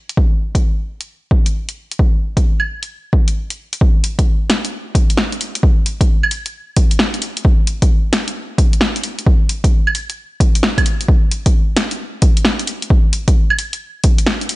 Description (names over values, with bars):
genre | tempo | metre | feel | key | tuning
future garage | 132 BPM | 4/4 | swing 65% on 16ths | none | none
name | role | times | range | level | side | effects
deep house drum kit | drums | 0.1-14.6 s | claves, hi-hat, snare drum | -18 LUFS | equal | low-pass filter on hats, vintage 12-bit sampler grit, studio reverb, low-pass filter on snare, low-pass filter on perc
electronic kick drum | drums | 0.2-14.2 s | none | -13 LUFS | equal | vintage 12-bit sampler grit, studio reverb
room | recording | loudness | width
digital ambience | nothing above 10.4 kHz | -13 LUFS | side -19 dB against mid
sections
0.0-3.8 A section; 3.8-14.6 B section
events
none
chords
none